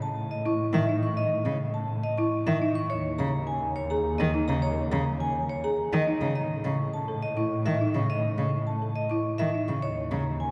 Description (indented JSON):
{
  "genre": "classical, minimalist pattern music",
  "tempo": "104 BPM",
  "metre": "3/4",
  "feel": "straight",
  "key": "unclear",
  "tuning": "A4 = 440 Hz",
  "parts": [
    { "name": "vibraphone with hard mallets", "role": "melody", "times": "0.0-10.5 s", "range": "C#5 to C#6", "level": "-34 LUFS", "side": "equal", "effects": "none" },
    { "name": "warm studio double bass section", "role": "bass", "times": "0.0-10.5 s", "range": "D#2 to A2", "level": "-34 LUFS", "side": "equal", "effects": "none" },
    { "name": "folk marimba with soft mallets", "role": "arpeggios", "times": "0.5-10.0 s", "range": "D#4 to D#5", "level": "-34 LUFS", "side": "equal", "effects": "none" },
    { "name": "rich cello", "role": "accompaniment", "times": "0.7-10.2 s", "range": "C#3 to D#3", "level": "-33 LUFS", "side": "equal", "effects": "none" }
  ],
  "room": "wet church reverb, RT60 3.1 s",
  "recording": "dark, warm production",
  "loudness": "-28 LUFS",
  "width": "mono",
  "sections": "0.0-10.5 A section",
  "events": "none",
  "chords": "0.0 A; 2.9 D#5; 6.4 A; 9.8 D#5"
}